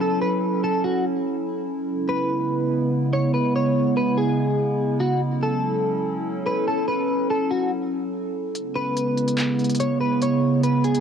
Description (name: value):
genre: hip hop, atmospheric cloud-rap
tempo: 144 BPM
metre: 4/4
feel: half-time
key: C# minor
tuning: A4 = 438 Hz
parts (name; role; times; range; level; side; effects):
- clean electric guitar; melody; 0.0-11.0 s; F#4 to C#5; -25 LUFS; left 1 dB; analog chorus, cassette tape, plate reverb, tape echo
- warbly tape-like pad; sustained chords; 0.0-11.0 s; C#3 to A4; -22 LUFS; right 1 dB; chorus, built-in reverb, cassette tape
- smooth R&B drum kit; drums; 8.6-11.0 s; handclaps, hi-hat; -30 LUFS; left 1 dB; overdrive, cassette tape
room: wet studio ambience, RT60 0.5 s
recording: home recording on cassette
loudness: -20 LUFS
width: side -7 dB against mid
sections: 0.0-11.0 A section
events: kick muted 8.6-11.0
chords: 0.0 F#m7; 1.9 C#m7; 5.2 F#m7; 8.6 C#m7